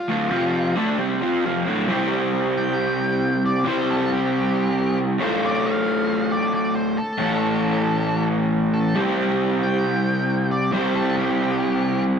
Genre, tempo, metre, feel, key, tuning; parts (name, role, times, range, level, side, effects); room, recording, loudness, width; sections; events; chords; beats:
rock; 136 BPM; 4/4; straight; A4 = 440 Hz
octave-fuzz lead guitar; melody; 0.0-12.0 s; F4 to G5; -27 LUFS; equal; distortion
crunchy overdriven guitar; riff; 0.1-12.2 s; D2 to C5; -20 LUFS; equal
wet stone room reverb, RT60 1.4 s; rough rehearsal-room recording; -19 LUFS; side -7 dB against mid
0.0-1.9 A section; 1.9-12.2 B section
0.0 F5; 1.9 C; 5.2 Dm; 7.2 A; 9.0 C
| 0.09 0.54 0.98 1.43 | 1.88 2.32 2.77 3.21 | 3.66 4.10 4.55 4.99 | 5.43 5.88 6.32 6.76 | 7.20 7.64 8.09 8.53 | 8.97 9.41 9.85 10.29 | 10.73 11.17 11.61 12.05